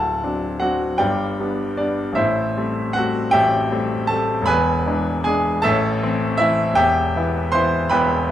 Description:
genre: classical, romantic character piece for solo piano.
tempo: 52 BPM (dotted quarters).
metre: 6/8.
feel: rubato.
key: unclear.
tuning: A4 = 442 Hz.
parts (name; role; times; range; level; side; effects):
clear baby grand piano; solo; 0.0-8.3 s; D1 to C6; -17 LUFS; equal; none.
room: moderate large studio reverb, RT60 1.2 s.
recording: none.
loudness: -17 LUFS.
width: side -11 dB against mid.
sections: 0.0-8.3 A section.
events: none.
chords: 0.0 D7; 1.0 G; 2.2 Am7; 4.5 E7; 5.7 Am; 6.8 Em.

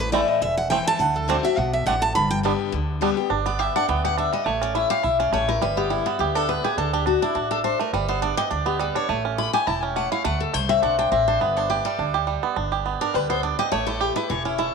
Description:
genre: bluegrass.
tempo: 208 BPM.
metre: 4/4.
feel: swing 54% on 8ths.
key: G major.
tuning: A4 = 444 Hz.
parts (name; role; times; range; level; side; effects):
picked steel-string acoustic guitar; melody; 0.0-2.4 s; A4 to B5; -22 LUFS; right 3 dB; none.
picked steel-string acoustic guitar; accompaniment; 0.0-14.7 s; E2 to B5; -24 LUFS; left 8 dB; none.
upright bass; bass; 0.0-14.7 s; E1 to D2; -29 LUFS; right 1 dB; none.
bluegrass banjo; arpeggios; 0.1-14.7 s; E3 to G4; -25 LUFS; right 10 dB; none.
room: wet spring reverb, RT60 2.5 s.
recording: 1960s-style stereo with parts hard left and right.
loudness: -20 LUFS.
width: side -5 dB against mid.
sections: 0.0-3.3 A section; 3.3-12.6 B section; 12.6-14.7 B section.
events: steel-string acoustic guitar solo 3.3-14.7.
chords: 0.0 Am; 1.0 D7; 2.2 G; 4.5 A; 5.6 G; 6.8 D5; 7.9 G; 9.1 A; 10.2 D5; 11.4 G; 13.7 A.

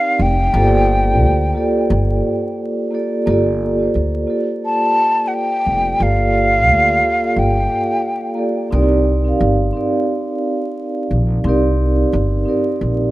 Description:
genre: lo-fi hip hop.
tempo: 88 BPM.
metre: 4/4.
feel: swing 60% on 16ths.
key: G minor.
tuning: A4 = 439 Hz.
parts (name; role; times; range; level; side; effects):
breathy concert flute; melody; 0.0-8.4 s; F5 to A5; -16 LUFS; equal; low-pass filter.
vibraphone with soft mallets; accompaniment; 0.0-13.1 s; Bb3 to F5; -18 LUFS; right 1 dB; cassette tape, low-pass filter.
upright bass; bass; 0.2-13.1 s; F1 to D2; -18 LUFS; equal; none.
room: little or no reverb.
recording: rough home demo mix, vinyl crackle.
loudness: -14 LUFS.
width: side -17 dB against mid.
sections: 0.0-3.3 A section; 3.3-13.1 B section.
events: none.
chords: 0.0 Cm9; 0.5 Gm9; 8.7 Cm9.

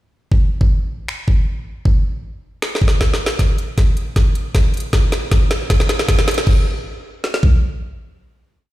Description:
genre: future bass.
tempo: 156 BPM.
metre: 4/4.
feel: half-time.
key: none.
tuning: none.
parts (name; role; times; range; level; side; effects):
trap drum kit; drums; 0.3-7.5 s; kick drum, snare drum; -14 LUFS; equal; studio ambience.
trap drum kit; drums; 1.1-6.5 s; crash cymbal, finger snaps, hi-hat, snare drum; -21 LUFS; equal; studio ambience.
room: digital ambience.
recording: played on a big sound system in a bare room, stone room reverb.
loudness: -15 LUFS.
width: side -16 dB against mid.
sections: 0.3-3.4 intro; 3.4-6.5 build; 6.5-8.7 final hit.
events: drum fill 2.6-3.4, 3.4-6.5; build-up 3.4-6.5.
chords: none.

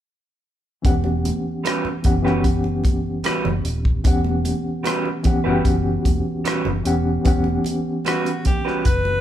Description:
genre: lush 1970s-style soul.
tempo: 75 BPM.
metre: 4/4.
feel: straight.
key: E dorian.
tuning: A4 = 441 Hz.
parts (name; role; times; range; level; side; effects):
reed electric piano; accompaniment; 0.8-9.2 s; E3 to F#5; -22 LUFS; equal; fast tremolo.
vintage muted fingered electric bass; bass; 0.8-9.2 s; D#1 to F#1; -25 LUFS; equal; none.
damped 70s drum kit; drums; 0.8-9.0 s; hi-hat, kick drum, rim click; -20 LUFS; equal; none.
congas; percussion; 0.8-9.2 s; none; -32 LUFS; right 4 dB; none.
electric guitar through a small old amp; riff; 1.6-8.8 s; G3 to B4; -25 LUFS; right 3 dB; none.
bright alto saxophone; melody; 8.1-9.2 s; F#4 to B4; -24 LUFS; left 1 dB; none.
room: moderate large studio reverb, RT60 1.2 s.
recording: band playing live in one room.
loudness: -18 LUFS.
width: side -11 dB against mid.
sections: 0.8-7.3 A section; 7.3-9.2 B section.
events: none.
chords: 0.8 Em69.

